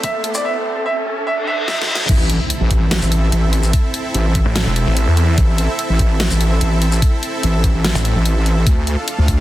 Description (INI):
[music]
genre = heavy wobble dubstep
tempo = 146 BPM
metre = 4/4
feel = half-time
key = A minor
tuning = A4 = 440 Hz
[part]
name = clear grand piano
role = melody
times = 0.0-2.0 s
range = A4 to E5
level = -20 LUFS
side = right 2 dB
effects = digital delay
[part]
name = supersaw pad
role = sustained chords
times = 0.0-9.4 s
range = A3 to F5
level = -24 LUFS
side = right 2 dB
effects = sidechain pumping
[part]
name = dubstep drum kit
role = drums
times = 0.0-9.4 s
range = crash cymbal, hi-hat, shaker, snare drum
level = -22 LUFS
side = equal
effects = studio reverb
[part]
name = electronic kick drum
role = drums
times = 0.0-9.4 s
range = none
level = -15 LUFS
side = equal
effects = studio reverb
[part]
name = riser, reverse cymbal and impact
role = sound effects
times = 0.0-3.7 s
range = none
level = -24 LUFS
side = equal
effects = none
[part]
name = wobble bass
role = bass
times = 2.1-9.4 s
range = E1 to D2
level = -16 LUFS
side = equal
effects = chorus, overdrive
[part]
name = snarling distorted saw bass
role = bass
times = 4.5-5.4, 8.0-8.1 s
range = A1 to E2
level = -15 LUFS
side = equal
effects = distortion, overdrive
[sound]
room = light reverb, digital ambience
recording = dense, heavily limited modern master, high-pass filter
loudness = -14 LUFS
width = side -15 dB against mid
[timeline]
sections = 0.0-2.1 A section; 2.1-9.4 B section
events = build-up 0.0-2.1; drum fill 0.0-0.4, 1.7-2.1; riser 0.0-2.1; filter sweep 0.0-2.1; reverse cymbal 1.3-2.1; drop 2.1-9.4; impact 2.1-3.7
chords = 0.4 N.C.; 2.1 Am; 8.7 Dm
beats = 0.04 | 0.45 0.86 1.27 1.68 | 2.09 2.50 2.91 3.32 | 3.73 4.14 4.56 4.97 | 5.38 5.79 6.20 6.61 | 7.02 7.43 7.84 8.26 | 8.67 9.08